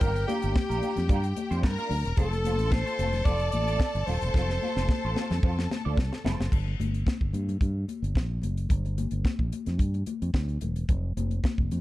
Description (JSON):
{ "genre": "disco", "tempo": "110 BPM", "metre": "4/4", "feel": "straight", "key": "unclear", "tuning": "A4 = 439 Hz", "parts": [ { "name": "breathy alto saxophone", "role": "melody", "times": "0.0-5.7 s", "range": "G4 to D5", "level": "-32 LUFS", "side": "equal", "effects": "slapback echo" }, { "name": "clear studio string section", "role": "second line", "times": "0.0-6.5 s", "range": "G4 to Bb5", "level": "-35 LUFS", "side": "left 4 dB", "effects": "none" }, { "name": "electric guitar at the edge of break-up", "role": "accompaniment", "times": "0.0-6.5 s", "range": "Bb3 to D5", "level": "-37 LUFS", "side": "right 6 dB", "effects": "wah" }, { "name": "fingered electric bass", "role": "bass", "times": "0.0-11.8 s", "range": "Eb1 to G2", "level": "-28 LUFS", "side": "equal", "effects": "none" }, { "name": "tight funk drum kit", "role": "drums", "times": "0.0-11.8 s", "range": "crash cymbal, hi-hat, kick drum, snare drum", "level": "-27 LUFS", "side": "equal", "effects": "none" }, { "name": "congas", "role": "percussion", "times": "0.0-11.8 s", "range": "none", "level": "-36 LUFS", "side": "left 5 dB", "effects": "none" } ], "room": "little or no reverb", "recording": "dark, warm production", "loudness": "-25 LUFS", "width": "side -16 dB against mid", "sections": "0.0-6.5 A section; 6.5-11.8 B section", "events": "drum fill 4.3-6.5", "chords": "0.0 Gm7; 2.2 F; 6.5 N.C." }